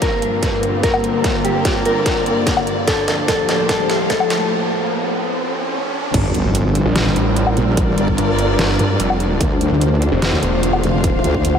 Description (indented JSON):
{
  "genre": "heavy wobble dubstep",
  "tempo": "147 BPM",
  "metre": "4/4",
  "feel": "half-time",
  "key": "G minor",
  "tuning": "A4 = 440 Hz",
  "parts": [
    { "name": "mellow electric guitar", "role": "melody", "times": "0.0-4.5 s", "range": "G4 to Bb4", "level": "-22 LUFS", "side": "left 1 dB", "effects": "analog chorus, ping-pong delay" },
    { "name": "evolving wavetable pad", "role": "sustained chords", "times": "0.0-11.6 s", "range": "D2 to Bb4", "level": "-22 LUFS", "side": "left 1 dB", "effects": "chorus, built-in reverb, sidechain pumping" },
    { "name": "dubstep drum kit", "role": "drums", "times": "0.0-11.6 s", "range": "crash cymbal, hi-hat, snare drum, woodblock", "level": "-22 LUFS", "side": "equal", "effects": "high-pass filter on hats, high-pass filter on snare, high-pass filter on perc, high-pass filter on cymbals, high-pass filter on room" },
    { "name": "electronic kick drum", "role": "drums", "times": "0.0-11.4 s", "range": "none", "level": "-21 LUFS", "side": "equal", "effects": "none" },
    { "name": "riser and sub drop", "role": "sound effects", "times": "0.0-7.8 s", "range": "none", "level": "-27 LUFS", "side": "right 1 dB", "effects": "none" },
    { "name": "warm studio string section", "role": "texture", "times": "0.0-11.6 s", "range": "G3 to F5", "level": "-24 LUFS", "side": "equal", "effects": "sidechain pumping" },
    { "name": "wobble bass", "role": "bass", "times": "6.1-11.6 s", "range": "F1 to G2", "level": "-18 LUFS", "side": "equal", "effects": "chorus, overdrive" },
    { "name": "snarling distorted saw bass", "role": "bass", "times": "6.9-10.8 s", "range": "E1 to Bb1", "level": "-19 LUFS", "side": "equal", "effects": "distortion, overdrive" }
  ],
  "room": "moderate huge ambient reverb, RT60 9.3 s",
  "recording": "dreamy mix soaked in reverb, high-pass filter",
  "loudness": "-15 LUFS",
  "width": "side -8 dB against mid",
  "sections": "0.0-6.1 A section; 6.1-11.6 B section",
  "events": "build-up 0.0-6.1; drum fill 0.0-4.5; riser 0.0-6.1; break 4.5-6.1; drop 6.1-11.6; impact 6.1-7.8",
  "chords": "0.0 Gm; 2.9 Dm; 6.1 Gm; 9.4 Dm"
}